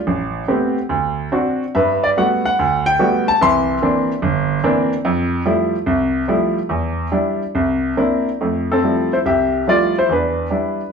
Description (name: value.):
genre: solo jazz.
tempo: 144 BPM.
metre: 4/4.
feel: swing 67% on 8ths, rubato.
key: unclear.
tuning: A4 = 440 Hz.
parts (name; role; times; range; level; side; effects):
clear baby grand piano; solo; 0.1-10.9 s; G1 to C6; -15 LUFS; equal; none.
room: wet large studio reverb, RT60 0.8 s.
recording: band playing live in one room.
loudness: -15 LUFS.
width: side -6 dB against mid.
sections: 0.0-8.4 A section; 8.4-10.9 B section.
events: none.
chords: 0.1 Am9; 0.9 D7; 1.8 Gmaj9; 3.4 C9; 5.0 Fmaj9; 6.7 Em7; 7.5 C9; 8.4 Fmaj9; 10.1 Em7.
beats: | 0.07 0.48 0.90 1.33 | 1.76 2.18 2.60 3.01 | 3.42 3.82 4.23 4.64 | 5.04 5.46 5.87 6.28 | 6.70 7.12 7.55 7.98 | 8.41 8.84 9.26 9.68 | 10.10 10.51.